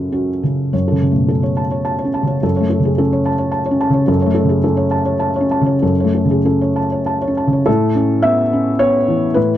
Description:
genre	neoclassical minimalist piano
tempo	94-112 BPM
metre	3/4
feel	rubato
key	F# minor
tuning	A4 = 439 Hz
part	felt-muted upright piano	solo	0.0-9.6 s	F#2 to A5	-14 LUFS	equal	none
room	light reverb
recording	dry, close 1970s-style studio recording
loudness	-14 LUFS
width	side -12 dB against mid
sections	0.7-7.7 A section; 7.7-9.6 B section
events	none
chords	0.0 F#m; 0.7 F#madd9; 7.7 Aadd9

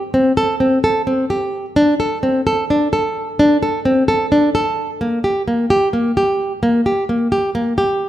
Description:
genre	contemporary instrumental, contemporary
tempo	259 BPM (eighths)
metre	7/8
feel	straight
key	unclear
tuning	A4 = 441 Hz
part	nylon-string guitar	solo	0.0-8.1 s	Bb3 to A4	-14 LUFS	equal	none
room	light reverb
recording	minimal, uncompressed stereo recording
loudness	-14 LUFS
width	side -13 dB against mid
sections	0.0-8.1 A section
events	none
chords	none

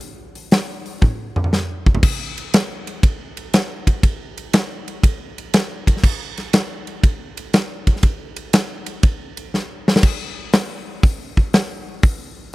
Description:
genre	rock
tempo	120 BPM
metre	4/4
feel	swing 68% on 8ths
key	none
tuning	none
part	huge arena drum kit	drums	0.0-12.2 s	crash cymbal, hi-hat, kick drum, ride cymbal, snare drum, toms	-16 LUFS	equal	none
room	little or no reverb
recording	dry, close 1970s-style studio recording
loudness	-16 LUFS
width	side -19 dB against mid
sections	0.0-2.0 A section; 2.0-10.0 B section; 10.0-12.5 C section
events	drum fill 1.0-2.0, 9.5-10.0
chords	none

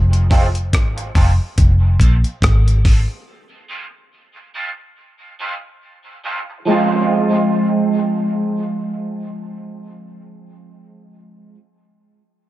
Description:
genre	dub reggae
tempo	71 BPM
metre	4/4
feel	swing 58% on 16ths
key	F minor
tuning	A4 = 445 Hz
part	vintage muted fingered electric bass	bass	0.0-3.1 s	F1 to Bb1	-14 LUFS	equal	none
part	breakbeat sampler-style drum kit	drums	0.1-3.1 s	hi-hat, kick drum, rim click	-15 LUFS	equal	none
part	electric guitar through a small old amp	accompaniment	0.3-11.6 s	F3 to F4	-19 LUFS	right 2 dB	ensemble chorus, high-pass filter, tape echo
room	little or no reverb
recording	dark, warm production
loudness	-14 LUFS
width	side -14 dB against mid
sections	0.0-6.7 A section; 6.7-10.0 B section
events	filter sweep on clean electric guitar 0.0-6.7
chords	0.0 Fm

